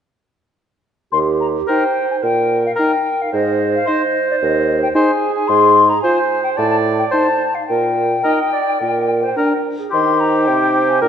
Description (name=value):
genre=quick classical-period movement for wind quintet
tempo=109 BPM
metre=4/4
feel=rubato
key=Eb major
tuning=A4 = 439 Hz
part: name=mellow hollow silver concert flute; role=melody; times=1.1-11.1 s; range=D5 to C6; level=-18 LUFS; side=left 6 dB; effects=none
part: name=warm clarinet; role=accompaniment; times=1.1-11.1 s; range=G4 to Eb5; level=-20 LUFS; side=right 6 dB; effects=none
part: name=mellow bassoon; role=bass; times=1.1-11.1 s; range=Eb2 to Eb3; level=-20 LUFS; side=right 2 dB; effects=none
part: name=warm oboe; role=second line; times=1.7-11.1 s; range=G4 to C5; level=-22 LUFS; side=left 2 dB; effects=none
part: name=mellow French horn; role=accompaniment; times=1.7-11.1 s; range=D4 to F4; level=-22 LUFS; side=equal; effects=none
room=moderate concert hall reverb, RT60 2.3 s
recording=nothing above 10.9 kHz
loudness=-14 LUFS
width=side -8 dB against mid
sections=1.1-11.1 A section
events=none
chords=1.1 Eb; 3.3 Ab; 5.5 Fm/Ab; 6.6 F13/A (rootless); 7.7 Eb/Bb; 8.8 Bb; 9.9 Eb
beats=| 1.13 1.68 2.23 2.77 | 3.32 3.87 4.41 4.94 | 5.48 6.03 6.57 7.12 | 7.68 8.24 8.81 9.37 | 9.93 10.48 11.02